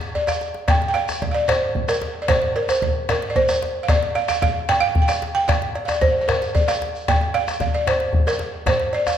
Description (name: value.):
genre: west african traditional, West African drum ensemble.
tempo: 150 BPM (dotted quarters).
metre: 12/8.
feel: straight.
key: unclear.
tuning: A4 = 442 Hz.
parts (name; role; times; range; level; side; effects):
djembe; percussion; 0.0-9.2 s; none; -26 LUFS; left 5 dB; none.
shekere; percussion; 0.0-9.2 s; none; -32 LUFS; right 3 dB; none.
balafon; melody; 0.2-9.2 s; Bb4 to G5; -20 LUFS; right 2 dB; none.
bombo; percussion; 0.3-9.2 s; none; -24 LUFS; equal; none.
cowbell; percussion; 0.3-9.1 s; none; -31 LUFS; right 1 dB; none.
room: moderate recital hall reverb, RT60 1.6 s.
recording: none.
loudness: -18 LUFS.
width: side -9 dB against mid.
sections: 0.7-9.2 A section.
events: drum fill 0.1-0.7.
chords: none.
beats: 0.28 | 0.68 1.08 1.48 1.89 | 2.29 2.69 3.09 3.49 | 3.89 4.29 4.69 5.09 | 5.49 5.88 6.28 6.68 | 7.08 7.48 7.87 8.27 | 8.67 9.06.